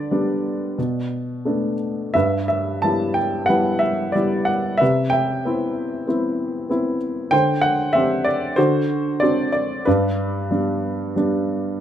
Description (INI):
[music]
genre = classical, lyrical solo piano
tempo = 83-98 BPM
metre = 4/4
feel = rubato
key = G major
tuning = A4 = 442 Hz
[part]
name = warm baby grand piano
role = solo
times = 0.0-11.8 s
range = G2 to A5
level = -18 LUFS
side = equal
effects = none
[sound]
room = light reverb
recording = close, detailed microphones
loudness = -18 LUFS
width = side -10 dB against mid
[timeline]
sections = 0.0-11.8 A section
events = none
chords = 0.0 G/D; 0.8 Bm7; 2.1 G6; 4.8 Cmaj7; 7.3 D7sus4; 8.6 D7; 9.9 G